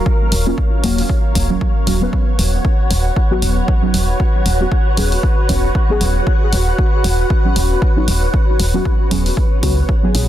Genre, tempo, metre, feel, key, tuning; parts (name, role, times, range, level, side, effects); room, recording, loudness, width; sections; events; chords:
deep house; 116 BPM; 4/4; swing 57% on 16ths; A4 = 440 Hz
soft string machine; sustained chords; 0.0-10.3 s; Gb3 to F#5; -22 LUFS; equal; phaser, ensemble chorus, vintage 12-bit sampler grit, sidechain pumping
electronic kick drum; drums; 0.1-10.0 s; -16 LUFS; equal
woody FM bass; bass; 0.3-10.3 s; Eb1 to C#2; -17 LUFS; equal; sidechain pumping
electronic hi-hat; drums; 0.3-10.3 s; -24 LUFS; left 1 dB
deep mellow chord stab; stabs; 0.5-10.3 s; Gb3 to Cb5; -22 LUFS; right 1 dB; chorus, phaser, sidechain pumping, dub echo
little or no reverb; dense, heavily limited modern master; -13 LUFS; side -12 dB against mid
0.0-10.3 A section
0.0 Ebm7; 2.1 Bsus2/Eb